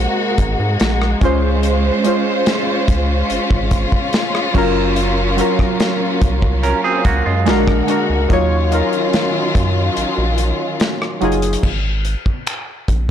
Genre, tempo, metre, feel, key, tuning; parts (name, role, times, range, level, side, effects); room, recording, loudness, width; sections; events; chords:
contemporary R&B; 72 BPM; 4/4; straight; A4 = 440 Hz
warm analog keys; accompaniment; 0.0-11.7 s; Gb3 to Db5; -20 LUFS; equal; chorus
warm symphonic string section; sustained chords; 0.0-11.6 s; C3 to C5; -20 LUFS; left 1 dB; sidechain pumping
rubbery square bass; bass; 0.0-13.1 s; Gb1 to Ab2; -18 LUFS; equal; tube saturation
modern studio drum kit; drums; 0.4-13.1 s; crash cymbal, finger snaps, hi-hat, kick drum, rim click, snare drum; -19 LUFS; equal
clean electric guitar; arpeggios; 6.6-7.7 s; Ab3 to Bb4; -20 LUFS; right 5 dB; spring reverb, ping-pong delay
small room ambience; blown-out, overdriven recording, overdrive; -14 LUFS; side -9 dB against mid
0.0-11.6 A section; 11.6-13.1 B section
break 10.0-11.6
0.0 Ab9; 1.2 Dbmaj7; 4.5 Gbmaj7; 7.5 Bb7alt; 8.3 Ebm9; 11.6 Absus2